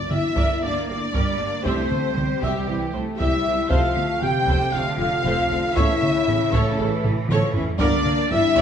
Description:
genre	cinematic, epic orchestral film score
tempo	117 BPM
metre	4/4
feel	straight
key	G dorian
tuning	A4 = 440 Hz
part	warm symphonic violin section	melody	0.0-8.6 s	G4 to G5	-29 LUFS	left 3 dB	none
part	warm symphonic violin section	second line	0.0-8.6 s	G4 to G5	-30 LUFS	left 3 dB	none
part	dark French horn section	sustained chords	0.0-8.6 s	G3 to G4	-26 LUFS	left 4 dB	none
part	clear trumpet	stabs	0.0-8.6 s	G4 to G5	-27 LUFS	right 2 dB	none
part	warm symphonic viola section	accompaniment	0.1-8.6 s	C4 to E5	-30 LUFS	right 1 dB	none
part	rich symphonic double bass section	bass	0.1-8.6 s	F1 to C2	-28 LUFS	right 3 dB	none
part	taiko ensemble	drums	0.1-8.6 s	none	-25 LUFS	equal	none
part	dark trombone section	sustained chords	0.6-8.0 s	C3 to Bb3	-33 LUFS	right 6 dB	none
part	rich symphonic cello section	bass	0.6-8.6 s	C3 to Bb3	-29 LUFS	right 3 dB	none
room	moderate scoring stage reverb, RT60 1.8 s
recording	small room ambience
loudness	-19 LUFS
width	side -8 dB against mid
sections	0.0-8.6 A section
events	drum fill 7.0-7.8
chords	0.0 Gm; 1.6 C; 3.7 F; 5.8 A; 7.8 Gm

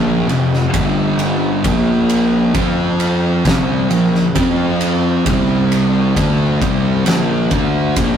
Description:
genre	stoner and doom metal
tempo	66 BPM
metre	4/4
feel	straight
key	unclear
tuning	A4 = 439 Hz
part	thick fuzz guitar	riff	0.0-8.2 s	F2 to F4	-18 LUFS	left 5 dB	distortion
part	thick fuzz guitar	riff	0.0-8.2 s	F2 to F4	-18 LUFS	right 6 dB	distortion
part	fuzz picked electric bass	bass	0.0-8.2 s	F1 to F2	-20 LUFS	equal	overdrive, tube saturation
part	oversized low-tuned drum kit	drums	0.3-8.2 s	kick drum, ride cymbal, snare drum	-20 LUFS	equal	none
room	light reverb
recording	rough rehearsal-room recording, warm saturation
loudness	-13 LUFS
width	side -8 dB against mid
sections	0.0-8.2 A section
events	none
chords	0.0 F5; 0.7 G5; 1.6 Bb5; 2.5 F5; 3.4 Bb5; 4.4 F5; 5.3 C5; 6.2 Bb5

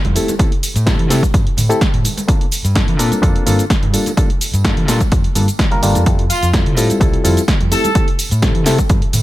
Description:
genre	filtered disco house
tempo	127 BPM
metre	4/4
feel	straight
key	unclear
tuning	A4 = 441 Hz
part	overdriven fingered electric bass	bass	0.0-9.2 s	G1 to E3	-17 LUFS	equal	sidechain pumping
part	punchy analog drum machine	drums	0.0-9.2 s	hi-hat, shaker, snare drum	-21 LUFS	equal	none
part	congas and tambourine	percussion	0.0-9.2 s	none	-26 LUFS	right 2 dB	sidechain pumping on perc
part	barky reed electric piano	accompaniment	0.2-8.8 s	G3 to Bb4	-20 LUFS	left 1 dB	overdrive, phaser, sidechain pumping
part	electronic kick drum	drums	0.4-9.0 s	none	-16 LUFS	equal	overdrive
part	warm horn section	melody	6.3-8.1 s	F4 to A4	-21 LUFS	equal	sidechain pumping, digital delay
room	digital ambience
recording	none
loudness	-12 LUFS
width	side -16 dB against mid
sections	0.0-9.2 A section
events	none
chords	0.2 Am7; 2.3 Gm11; 3.9 Gm9; 6.1 Fmaj7; 7.7 Am7

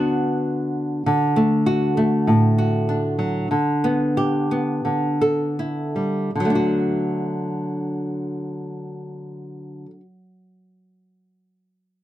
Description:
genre	folk, solo fingerstyle acoustic guitar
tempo	76-100 BPM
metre	4/4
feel	rubato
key	D major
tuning	A4 = 440 Hz
part	nylon-string guitar	solo	0.0-10.1 s	A2 to A4	-19 LUFS	equal	none
room	light reverb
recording	close, detailed microphones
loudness	-19 LUFS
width	side -13 dB against mid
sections	0.0-1.1 A section; 1.1-6.3 B section; 6.3-9.4 C section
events	slowing down 1.1-6.3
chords	0.0 D6; 1.1 D; 3.5 G6/D; 6.3 D

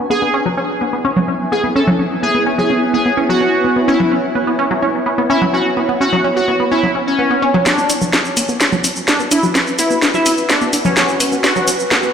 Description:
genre	melodic techno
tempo	127 BPM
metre	4/4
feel	straight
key	unclear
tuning	A4 = 439 Hz
part	tight sequenced synth	arpeggios	0.0-12.1 s	F#3 to D4	-18 LUFS	equal	chorus, phaser, cassette tape, dub echo
part	granular cloud pad	texture	0.0-12.1 s	B3 to G#5	-20 LUFS	right 1 dB	built-in reverb
part	resonant sweep polysynth	melody	0.1-11.7 s	C#4 to A4	-18 LUFS	equal	chorus, dub echo
part	house drum kit	drums	7.7-12.1 s	hi-hat, shaker, snare drum	-15 LUFS	equal	overdrive, high-pass filter on snare, low-pass filter on snare, high-pass filter on perc, low-pass filter on perc, high-pass filter on hats, low-pass filter on hats
room	wet huge ambient reverb, RT60 4.3 s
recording	played on a big sound system in a bare room, stone room reverb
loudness	-13 LUFS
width	side -7 dB against mid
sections	0.0-7.7 A section; 7.7-12.1 B section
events	filter sweep on synth arpeggio sound 0.0-7.7; build-up 7.7-12.1; drum fill 7.7-12.1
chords	0.1 C#m; 7.7 B5

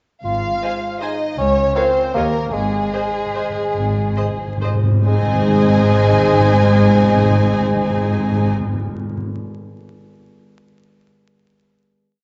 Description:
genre	classical, orchestral ballroom waltz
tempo	127-169 BPM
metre	3/4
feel	rubato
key	Ab major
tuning	A4 = 437 Hz
part	warm studio violin section	melody	0.2-8.5 s	Ab4 to Ab5	-26 LUFS	equal	none
part	mellow bassoon	accompaniment	0.2-8.5 s	Ab3 to F4	-24 LUFS	equal	none
part	rich symphonic cello section	bass	0.2-8.5 s	Db2 to Ab2	-24 LUFS	equal	none
part	warm studio double bass section	bass	0.2-8.5 s	Ab1 to Eb2	-26 LUFS	equal	none
part	timpani	percussion	0.2-9.2 s	Ab2	-22 LUFS	equal	none
part	warm studio violin section	second line	0.6-8.5 s	Ab4 to Ab5	-29 LUFS	equal	none
part	rich chamber viola section	accompaniment	0.6-8.5 s	C4 to C5	-29 LUFS	equal	none
part	mellow French horn section	sustained chords	0.6-8.5 s	F4 to Db5	-26 LUFS	equal	none
room	wet scoring stage reverb, RT60 1.7 s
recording	worn, warbling old tape, cassette tape, vinyl crackle, warbly pitch drift, nothing above 7.8 kHz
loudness	-17 LUFS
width	mono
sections	0.2-5.1 A section; 5.1-7.7 final chord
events	slowing down 2.0-5.1; timpani fill 2.5-5.1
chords	0.2 Ab; 1.4 Bbm/Db; 2.2 Eb7; 2.5 Ab

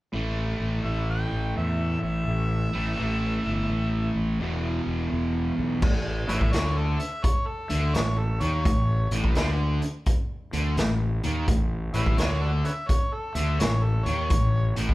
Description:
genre	blues rock power trio and southern rock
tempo	85 BPM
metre	4/4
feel	swing 65% on 8ths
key	A major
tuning	A4 = 442 Hz
part	distorted electric guitar	riff	0.1-14.9 s	E2 to A3	-28 LUFS	equal	distortion
part	fuzz fingered electric bass	bass	0.1-14.9 s	E1 to E2	-27 LUFS	equal	overdrive
part	overdriven harmonica	melody	0.8-14.7 s	D4 to G5	-31 LUFS	equal	none
part	raw garage drum kit	drums	5.8-14.9 s	crash cymbal, hi-hat, kick drum, snare drum	-26 LUFS	equal	none
room	moderate large studio reverb, RT60 0.9 s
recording	band playing live in one room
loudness	-23 LUFS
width	side -18 dB against mid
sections	0.1-5.8 A section; 5.8-14.9 B section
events	none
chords	0.1 A5; 4.4 E5; 5.8 A

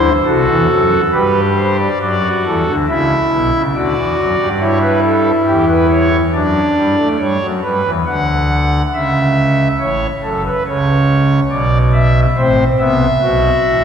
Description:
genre	classical, baroque-style 3-part fugue for pipe organ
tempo	69 BPM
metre	3/4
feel	straight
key	G major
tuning	A4 = 440 Hz
part	pipe organ, foundations	solo	0.0-13.8 s	F#1 to F#5	-12 LUFS	equal	none
room	wet church reverb, RT60 2.8 s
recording	recorded in a church or concert hall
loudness	-12 LUFS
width	side -7 dB against mid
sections	0.0-7.2 A section; 7.2-13.8 B section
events	none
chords	0.0 D7; 1.1 G; 2.0 D; 3.7 Dadd9; 4.6 A7/G; 6.3 D/F#; 7.2 G; 8.9 C#m; 9.8 F#m; 11.5 Bm; 12.4 Am

